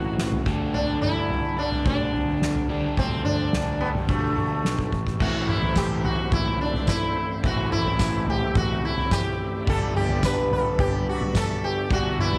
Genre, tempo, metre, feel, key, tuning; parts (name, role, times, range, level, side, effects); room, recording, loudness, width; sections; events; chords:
psychedelic rock; 107 BPM; 4/4; straight; A dorian; A4 = 440 Hz
sitar; melody; 0.0-12.4 s; A3 to B4; -29 LUFS; equal; tape echo
crunchy overdriven guitar; riff; 0.0-12.4 s; G2 to A4; -32 LUFS; equal; phaser
fuzz picked electric bass; bass; 0.0-12.4 s; G1 to D2; -31 LUFS; equal; overdrive
soft-mallet drum kit; drums; 0.2-12.4 s; crash cymbal, kick drum, snare drum, toms; -28 LUFS; equal
bright tonewheel organ; sustained chords; 5.2-12.4 s; G4 to D6; -40 LUFS; equal; slow rotary speaker, chorus vibrato
tambourine; percussion; 5.8-11.5 s; -42 LUFS; equal
light reverb; -24 LUFS; mono
0.0-5.2 A section; 5.2-12.4 B section
drum fill 4.1-5.2
0.5 Dsus4; 5.2 Am; 9.7 G6